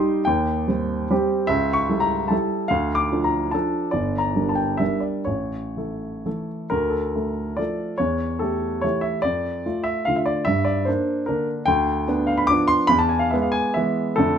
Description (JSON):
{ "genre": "classical, romantic triple-time dance for piano with dotted rhythms", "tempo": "119-160 BPM", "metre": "3/4", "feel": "rubato", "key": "D minor", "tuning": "A4 = 440 Hz", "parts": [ { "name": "warm baby grand piano", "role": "solo", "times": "0.0-14.4 s", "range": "G1 to D6", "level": "-20 LUFS", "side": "equal", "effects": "none" } ], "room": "light reverb", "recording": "minimal, uncompressed stereo recording", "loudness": "-20 LUFS", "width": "side -8 dB against mid", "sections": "0.0-6.7 A section; 6.7-14.4 B section", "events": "none", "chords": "0.3 Cm/Eb; 1.5 A7/C#; 2.7 Dm; 3.9 Gm; 5.3 A; 6.7 Dm; 8.0 A7/E; 9.2 Dm/F; 10.5 Gm; 11.7 Bdim/D; 12.9 E" }